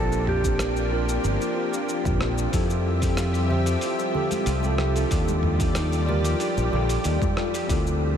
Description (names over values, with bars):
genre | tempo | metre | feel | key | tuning
sunset chillout | 93 BPM | 4/4 | straight | unclear | A4 = 440 Hz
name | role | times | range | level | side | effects
mellow electric guitar | melody | 0.0-0.9 s | G4 to A4 | -33 LUFS | equal | tape echo
tine electric piano | accompaniment | 0.0-8.2 s | C4 to E5 | -28 LUFS | moving between left 4 dB and right 4 dB | medium stereo tremolo, auto-pan, tape echo
lush unison pad | sustained chords | 0.0-8.2 s | D3 to E5 | -29 LUFS | equal | chorus
modern bright fingered electric bass | bass | 0.0-8.2 s | G1 to F2 | -24 LUFS | equal | tube saturation
dusty soul sampler-style drum kit | drums | 0.1-8.0 s | cabasa, hi-hat, rim click, toms | -32 LUFS | equal | studio reverb
electronic kick drum | drums | 0.4-7.8 s | none | -27 LUFS | equal | overdrive, studio reverb
Celtic harp | arpeggios | 2.5-8.2 s | D4 to A4 | -34 LUFS | right 1 dB | tape echo
congas | percussion | 3.5-7.3 s | none | -35 LUFS | left 4 dB | none
room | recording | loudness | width
moderate huge ambient reverb, RT60 7.6 s | dreamy mix soaked in reverb | -21 LUFS | side -8 dB against mid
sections
0.0-8.2 A section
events
none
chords
0.0 Bb6; 2.5 Fmaj9; 5.1 Ebmaj9#11